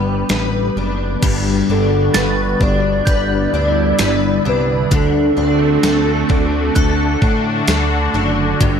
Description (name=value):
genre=dream pop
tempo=65 BPM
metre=4/4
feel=straight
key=G major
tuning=A4 = 439 Hz
part: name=hollow clarinet-like synth lead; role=melody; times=0.0-8.8 s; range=G4 to D5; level=-20 LUFS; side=equal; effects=chorus, phaser, tape echo, slapback echo
part: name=phased analog pad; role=sustained chords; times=0.0-8.8 s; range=B2 to G4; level=-20 LUFS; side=equal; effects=phaser, chorus
part: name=picked twelve-string acoustic guitar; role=arpeggios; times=0.0-8.8 s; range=G2 to B4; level=-20 LUFS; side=left 2 dB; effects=ensemble chorus, tape echo
part: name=fat analog bass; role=bass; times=0.0-8.8 s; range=F#1 to A2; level=-20 LUFS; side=equal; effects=none
part: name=detuned 8-bit digital drum machine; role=drums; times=0.3-8.8 s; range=crash cymbal, hi-hat, kick drum, snare drum, tambourine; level=-18 LUFS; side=equal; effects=none
part: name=synth chime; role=texture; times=2.1-8.8 s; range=F#6 to A6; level=-28 LUFS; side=right 3 dB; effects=ensemble chorus, tape echo
room=moderate concert hall reverb, RT60 2.4 s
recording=big arena sound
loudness=-13 LUFS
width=side -7 dB against mid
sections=0.0-1.2 A section; 1.2-8.8 B section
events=none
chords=0.0 Gadd9; 1.2 Gmaj7; 4.9 D7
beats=0.30 | 1.22 2.15 3.07 3.99 | 4.92 5.84 6.76 7.68 | 8.61